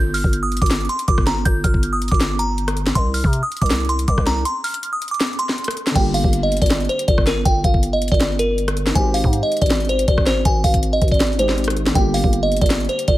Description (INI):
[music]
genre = hip hop, trap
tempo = 160 BPM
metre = 4/4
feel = half-time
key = G phrygian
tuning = A4 = 440 Hz
[part]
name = delicate synth tine bell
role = melody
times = 0.0-13.2 s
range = Bb4 to G6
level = -21 LUFS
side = right 1 dB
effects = chorus
[part]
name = growling 808-style bass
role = bass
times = 0.0-13.2 s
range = G1 to C3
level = -21 LUFS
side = equal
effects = none
[part]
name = trap drum kit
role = drums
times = 0.1-13.2 s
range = crash cymbal, hi-hat, kick drum, rim click, snare drum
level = -19 LUFS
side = equal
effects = none
[part]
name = dark baby grand piano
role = accompaniment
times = 5.9-13.2 s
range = D3 to G4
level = -26 LUFS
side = equal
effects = none
[sound]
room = little or no reverb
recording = none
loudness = -16 LUFS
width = side -16 dB against mid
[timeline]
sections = 0.0-6.0 A section; 6.0-13.2 B section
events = break 4.5-6.0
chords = 0.0 Gm; 3.0 Csus2; 6.0 Gm; 9.0 Abmaj7; 12.0 Gm